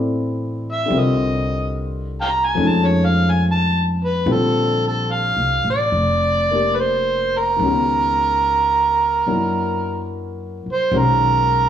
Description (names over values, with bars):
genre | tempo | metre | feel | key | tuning
jazz ballad | 72 BPM | 4/4 | swing 69% on 8ths | F major | A4 = 441 Hz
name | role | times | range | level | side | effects
warm concert grand piano | accompaniment | 0.0-11.7 s | D3 to D5 | -23 LUFS | left 3 dB | none
upright bass | bass | 0.0-11.7 s | F1 to Gb2 | -22 LUFS | equal | none
overdriven harmonica | melody | 0.7-11.7 s | A4 to Bb5 | -18 LUFS | right 2 dB | none
room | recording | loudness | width
moderate large studio reverb, RT60 1.2 s | small room ambience | -16 LUFS | side -9 dB against mid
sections
0.0-4.3 A section; 4.3-11.7 B section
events
harmonica solo 0.0-4.3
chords
0.0 Fmaj9 (rootless); 0.9 Cm7; 2.6 F7alt; 4.3 Bbmaj9; 7.6 Db5; 9.3 Gbaug7; 10.9 Bmaj9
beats
0.08 | 0.91 1.74 2.58 3.42 | 4.26 5.10 5.93 6.77 | 7.60 8.43 9.26 10.09 | 10.91